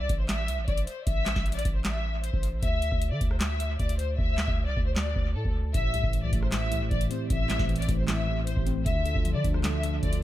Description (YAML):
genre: hip hop, trap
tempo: 154 BPM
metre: 4/4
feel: half-time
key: A minor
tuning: A4 = 440 Hz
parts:
  - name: warm studio violin section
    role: melody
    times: 0.0-10.2 s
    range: A4 to E5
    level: -33 LUFS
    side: left 3 dB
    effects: low-pass filter, tape echo
  - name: long sustained 808-style bass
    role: bass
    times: 0.0-10.2 s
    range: A1 to D3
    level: -29 LUFS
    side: equal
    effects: none
  - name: booming analog drum machine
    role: drums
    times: 0.1-10.2 s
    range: handclaps, hi-hat, kick drum, rim click, snare drum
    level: -29 LUFS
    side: equal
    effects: none
  - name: mellow tine electric piano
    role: accompaniment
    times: 5.7-10.2 s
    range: A2 to D4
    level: -31 LUFS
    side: equal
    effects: medium stereo tremolo, low-pass filter
  - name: hollow soft pad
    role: sustained chords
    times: 5.7-10.2 s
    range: D3 to C5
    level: -40 LUFS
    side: right 2 dB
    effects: chorus
room: little or no reverb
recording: echo-heavy mix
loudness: -25 LUFS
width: side -14 dB against mid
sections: 0.0-10.2 A section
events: hi-hats muted 4.2-5.7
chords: 0.0 A5; 2.6 D5; 5.7 Am7; 8.9 Dm